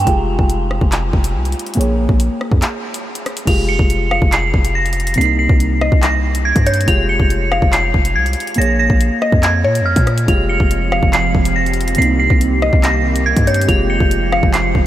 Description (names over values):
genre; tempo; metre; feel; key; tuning
hip hop, drill; 141 BPM; 4/4; half-time; F minor; A4 = 439 Hz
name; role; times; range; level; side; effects
dark detuned synth bell; melody; 0.0, 3.5-14.9 s; F6 to F7; -19 LUFS; right 2 dB; chorus, phaser, diffuse ambient delay
dark concert grand piano; accompaniment; 0.0-14.9 s; C3 to Db5; -22 LUFS; equal; none
hard-hitting 808-style bass; bass; 0.0-14.9 s; F1 to Bb2; -17 LUFS; equal; none
drill drum kit; drums; 0.0-14.8 s; crash cymbal, handclaps, hi-hat, kick drum, rim click; -18 LUFS; equal; none
mallet-like synth pluck; second line; 4.1-14.9 s; Db5 to F5; -23 LUFS; left 2 dB; chorus, diffuse ambient delay
warbly tape-like pad; sustained chords; 10.6-14.9 s; Eb3 to G4; -22 LUFS; right 4 dB; chorus, built-in reverb
room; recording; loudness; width
light reverb; none; -12 LUFS; side -13 dB against mid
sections
0.0-3.5 A section; 3.5-14.9 B section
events
break 0.1-3.5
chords
0.1 Fmadd9; 1.8 Bbm7; 3.5 Fmadd9; 5.2 Cm7; 6.9 Fmadd9; 8.6 Bbm7; 10.3 Fmadd9; 12.0 Cm7; 13.7 Fmadd9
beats
| 0.07 0.49 0.92 1.34 | 1.77 2.20 2.62 3.05 | 3.47 3.90 4.32 4.75 | 5.17 5.60 6.03 6.45 | 6.88 7.30 7.73 8.15 | 8.58 9.01 9.43 9.86 | 10.28 10.71 11.13 11.56 | 11.98 12.41 12.84 13.26 | 13.69 14.11 14.54